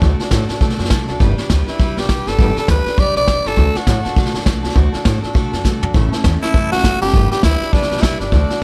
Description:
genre	rockabilly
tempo	202 BPM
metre	4/4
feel	swing 60% on 8ths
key	D major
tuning	A4 = 435 Hz
part	picked steel-string acoustic guitar	accompaniment	0.0-8.6 s	A2 to B4	-25 LUFS	equal	none
part	upright bass	bass	0.0-8.5 s	E1 to B2	-21 LUFS	equal	none
part	vintage brush drum kit	drums	0.0-8.5 s	hi-hat, kick drum, snare drum, toms	-19 LUFS	equal	none
part	growling tenor saxophone	melody	1.7-4.4, 6.4-8.6 s	D4 to D5	-22 LUFS	equal	tape echo
room	small room ambience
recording	none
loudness	-16 LUFS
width	mono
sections	0.0-8.6 A section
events	drum fill 5.7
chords	0.0 D; 1.2 G; 3.6 D; 5.9 A; 7.1 G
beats	| 0.02 0.31 0.61 0.91 | 1.20 1.50 1.80 2.09 | 2.39 2.69 2.98 3.28 | 3.58 3.87 4.17 4.46 | 4.76 5.06 5.36 5.65 | 5.95 6.25 6.54 6.84 | 7.14 7.43 7.73 8.03 | 8.32 8.62

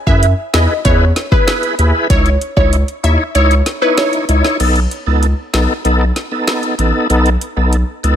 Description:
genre	dancehall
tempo	96 BPM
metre	4/4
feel	straight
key	unclear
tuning	A4 = 440 Hz
part	glassy wavetable pluck	melody	0.1-4.4 s	B4 to E5	-18 LUFS	equal	chorus, digital delay
part	overdriven tonewheel organ	accompaniment	0.1-8.2 s	B3 to C#5	-16 LUFS	equal	chorus vibrato, slow rotary speaker, sidechain pumping
part	saturated sub bass	bass	0.1-8.2 s	A1 to F#2	-13 LUFS	equal	none
part	afro-pop drum kit	drums	0.1-8.2 s	crash cymbal, hi-hat, kick drum, snare drum	-17 LUFS	equal	overdrive
room	little or no reverb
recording	none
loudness	-11 LUFS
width	side -9 dB against mid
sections	0.0-4.6 A section; 4.6-8.2 B section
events	kick muted 3.4-4.6, 4.6-8.2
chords	0.0 E; 2.1 C#madd9; 4.6 B7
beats	0.23 0.85 1.48 | 2.10 2.73 3.35 3.98 | 4.60 5.22 5.85 6.47 | 7.10 7.72

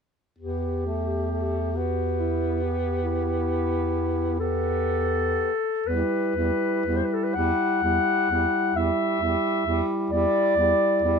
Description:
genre	classical, lyrical piece for single-reed quartet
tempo	39-47 BPM (dotted quarters)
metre	12/8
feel	rubato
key	E minor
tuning	A4 = 441 Hz
part	warm clarinet	melody	0.4-11.2 s	E4 to F#5	-25 LUFS	left 3 dB	none
part	warm alto saxophone	second line	0.4-11.2 s	E4 to G4	-30 LUFS	right 5 dB	none
part	clear tenor saxophone	accompaniment	0.4-11.2 s	G3 to B3	-29 LUFS	left 1 dB	none
part	warm bass clarinet	bass	0.4-11.2 s	E2	-28 LUFS	right 2 dB	none
room	light reverb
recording	none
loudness	-22 LUFS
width	side -6 dB against mid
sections	0.4-5.9 A section; 5.9-11.2 B section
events	none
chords	0.4 Em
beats	| 0.39 1.75 3.04 4.39 | 5.88 7.36 8.75 10.12

